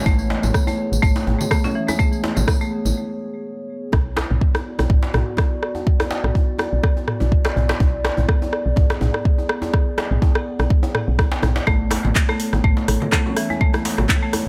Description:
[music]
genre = afro house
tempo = 124 BPM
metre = 4/4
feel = swing 55% on 16ths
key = B dorian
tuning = A4 = 440 Hz
[part]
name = dark analog pad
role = sustained chords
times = 0.0-14.5 s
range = B3 to D5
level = -31 LUFS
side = equal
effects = chorus, phaser, sidechain pumping
[part]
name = marimba with hard mallets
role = arpeggios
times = 0.1-2.7, 11.7-14.3 s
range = E3 to C#4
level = -27 LUFS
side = equal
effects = sidechain pumping, digital delay
[part]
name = woody FM bass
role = bass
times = 0.1-14.1 s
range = A1 to B1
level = -24 LUFS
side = equal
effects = sidechain pumping
[part]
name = electronic kick drum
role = drums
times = 0.1-14.2 s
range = none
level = -20 LUFS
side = equal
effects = none
[part]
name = djembe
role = percussion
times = 0.1-14.4 s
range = none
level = -32 LUFS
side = equal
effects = none
[part]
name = tambourine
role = percussion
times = 0.1-2.9 s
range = none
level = -36 LUFS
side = equal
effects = none
[part]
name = afro-pop drum kit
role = drums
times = 0.4-14.4 s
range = handclaps, hi-hat, rim click, toms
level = -26 LUFS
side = equal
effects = none
[part]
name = congas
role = percussion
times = 0.4-2.9, 12.0-14.1 s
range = none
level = -31 LUFS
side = equal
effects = none
[sound]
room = studio ambience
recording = none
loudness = -19 LUFS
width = mono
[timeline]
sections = 0.0-3.9 A section; 3.9-14.5 A section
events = break 3.0-3.9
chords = 0.0 Aadd9; 3.9 Bm; 11.7 Aadd9

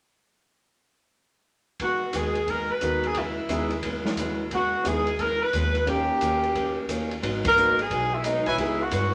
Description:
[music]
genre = jazz, big band swing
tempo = 177 BPM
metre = 4/4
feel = swing 65% on 8ths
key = G# minor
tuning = A4 = 439 Hz
[part]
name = bright saxophone section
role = melody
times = 1.8-9.1 s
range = D#4 to B4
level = -27 LUFS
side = equal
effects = none
[part]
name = picked steel-string acoustic guitar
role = accompaniment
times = 1.8-9.1 s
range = G#2 to G4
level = -35 LUFS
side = equal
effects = none
[part]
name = open jazz drum kit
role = drums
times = 1.8-9.0 s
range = hi-hat, kick drum, ride cymbal, snare drum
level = -34 LUFS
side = equal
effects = none
[part]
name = upright bass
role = bass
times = 2.1-9.1 s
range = G#1 to G2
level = -35 LUFS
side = equal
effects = none
[part]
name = warm concert grand piano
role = accompaniment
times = 2.8-8.8 s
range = A#3 to A#4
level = -33 LUFS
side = equal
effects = none
[part]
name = warm trumpet section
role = stabs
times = 8.5 s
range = E4 to G#5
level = -30 LUFS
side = equal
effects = none
[sound]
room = wet studio reverb, RT60 0.7 s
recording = none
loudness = -25 LUFS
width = mono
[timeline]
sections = 1.8-7.2 A section; 7.2-9.1 B section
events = band accent 7.4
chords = 1.8 G#m7/D#; 3.2 C#m7; 5.9 D#7; 7.2 G#m7; 8.6 C#m7

